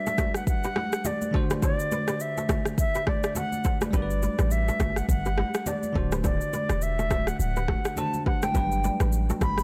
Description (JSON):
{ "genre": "afrobeats", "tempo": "104 BPM", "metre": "4/4", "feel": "swing 58% on 16ths", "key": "G major", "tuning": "A4 = 440 Hz", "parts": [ { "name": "silver concert flute", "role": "melody", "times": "0.0-9.6 s", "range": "D5 to B5", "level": "-33 LUFS", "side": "equal", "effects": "digital delay" }, { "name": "bell-like tine electric piano", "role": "accompaniment", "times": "0.0-9.6 s", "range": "D3 to C5", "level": "-37 LUFS", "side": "equal", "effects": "none" }, { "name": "kora", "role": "riff", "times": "0.1-9.5 s", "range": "D4 to D5", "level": "-39 LUFS", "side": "equal", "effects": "none" }, { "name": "deep house drum kit", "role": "drums", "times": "0.1-9.6 s", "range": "kick drum, rim click, shaker", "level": "-30 LUFS", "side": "equal", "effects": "overdrive" }, { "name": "congas", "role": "percussion", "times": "0.1-9.6 s", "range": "none", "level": "-37 LUFS", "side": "equal", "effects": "none" }, { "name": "warm 808-style bass", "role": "bass", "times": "3.9-9.6 s", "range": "D1 to A1", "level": "-29 LUFS", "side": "equal", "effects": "none" } ], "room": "small room ambience", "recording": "none", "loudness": "-26 LUFS", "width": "mono", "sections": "0.0-9.6 A section", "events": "none", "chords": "0.0 Gmaj7; 1.3 D7; 3.9 Gmaj7; 6.0 D7; 8.5 Gmaj7" }